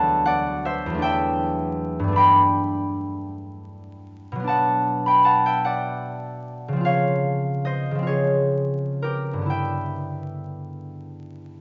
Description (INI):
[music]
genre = classical, solo harp piece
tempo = 40-53 BPM (dotted quarters)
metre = 6/8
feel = rubato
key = G lydian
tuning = A4 = 440 Hz
[part]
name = concert harp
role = solo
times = 0.0-11.6 s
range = D2 to B5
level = -23 LUFS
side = equal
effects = none
[sound]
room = moderate recital hall reverb, RT60 1.7 s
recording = vinyl crackle, nothing above 7.6 kHz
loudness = -22 LUFS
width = mono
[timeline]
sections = 0.0-11.6 A section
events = none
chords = 0.0 D13; 1.0 Em11; 2.2 Gadd9; 4.5 Bm7; 6.8 C#maj7; 9.5 G6